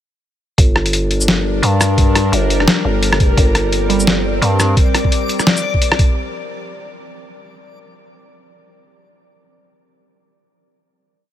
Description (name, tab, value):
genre	half-time drum and bass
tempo	172 BPM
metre	4/4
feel	swing 57% on 16ths, half-time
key	G minor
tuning	A4 = 440 Hz
part	bowed-like drone	sustained chords	1.0-6.1 s	G3 to Bb4	-21 LUFS	left 3 dB	built-in reverb, sidechain pumping
part	growling 808-style bass	bass	0.6-4.8 s	G1 to G2	-16 LUFS	equal	none
part	boom bap sampler-style drum kit	drums	0.6-6.1 s	hi-hat, rim click, shaker, snare drum	-17 LUFS	equal	none
part	electronic kick drum	drums	0.6-6.1 s	none	-14 LUFS	equal	none
part	warbly dusty pluck	arpeggios	3.9-4.9 s	G3	-24 LUFS	right 8 dB	chorus, tape echo
room	digital ambience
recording	none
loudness	-12 LUFS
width	side -11 dB against mid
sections	0.6-6.2 drop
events	drop 0.6-6.2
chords	0.6 Gm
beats	| 0.58 0.93 1.28 1.63 | 1.98 2.33 2.67 3.02 | 3.37 3.72 4.07 4.42 | 4.77 5.12 5.46 5.81